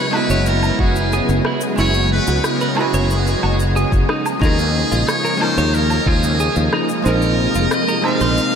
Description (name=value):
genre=sunset chillout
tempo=91 BPM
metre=4/4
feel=straight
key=unclear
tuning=A4 = 436 Hz
part: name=trumpet with metal mute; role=melody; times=0.0-8.6 s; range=Ab4 to F5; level=-21 LUFS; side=equal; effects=ping-pong delay
part: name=archtop guitar, miked and amplified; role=accompaniment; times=0.0-8.6 s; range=Ab3 to Cb5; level=-23 LUFS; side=moving between left 4 dB and right 5 dB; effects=auto-pan, ping-pong delay
part: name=soft string machine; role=sustained chords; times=0.0-8.6 s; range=C3 to Eb5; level=-21 LUFS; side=equal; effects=ensemble chorus
part: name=clean electric guitar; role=arpeggios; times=0.0-8.4 s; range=Eb4 to Db5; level=-25 LUFS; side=right 2 dB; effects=ping-pong delay
part: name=electronic woodblock, cabasa and rim click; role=drums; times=0.1-8.5 s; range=none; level=-27 LUFS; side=left 1 dB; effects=studio reverb
part: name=fretless electric bass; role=bass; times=0.3-8.4 s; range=F1 to Eb2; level=-19 LUFS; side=equal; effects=none
part: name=electronic kick drum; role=drums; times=0.8-6.2 s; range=none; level=-17 LUFS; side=equal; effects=studio reverb
room=wet huge ambient reverb, RT60 8.1 s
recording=dreamy mix soaked in reverb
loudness=-14 LUFS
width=side -7 dB against mid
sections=0.0-8.6 A section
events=none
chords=0.0 Gb9sus4; 4.1 Eb9sus4; 6.7 Bb9sus4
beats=0.46 1.12 | 1.78 2.44 3.10 3.76 | 4.42 5.08 5.74 6.40 | 7.06 7.72 8.38